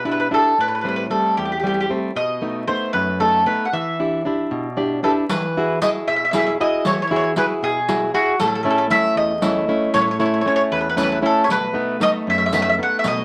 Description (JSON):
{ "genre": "italian folk, Italian serenade", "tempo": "77 BPM (dotted quarters)", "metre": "6/8", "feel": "straight", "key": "E minor, E major from 5.3 s", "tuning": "A4 = 440 Hz", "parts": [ { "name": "mandolin", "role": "melody", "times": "0.0-13.2 s", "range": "F#4 to F#5", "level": "-22 LUFS", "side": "equal", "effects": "none" }, { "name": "flamenco guitar", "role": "accompaniment", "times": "0.0-13.2 s", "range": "E2 to D5", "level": "-24 LUFS", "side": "equal", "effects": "none" }, { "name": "riq", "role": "percussion", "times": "5.3-13.2 s", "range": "none", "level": "-29 LUFS", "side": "equal", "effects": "none" } ], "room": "moderate studio reverb, RT60 0.6 s", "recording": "vinyl crackle", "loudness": "-19 LUFS", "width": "mono", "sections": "0.0-5.3 A section; 5.3-13.2 B section", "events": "nylon-string guitar fill 4.5-5.3", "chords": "0.0 Em7; 0.6 Am7; 2.2 B7; 3.7 Em7; 5.3 Eadd9; 8.4 A; 11.5 B7" }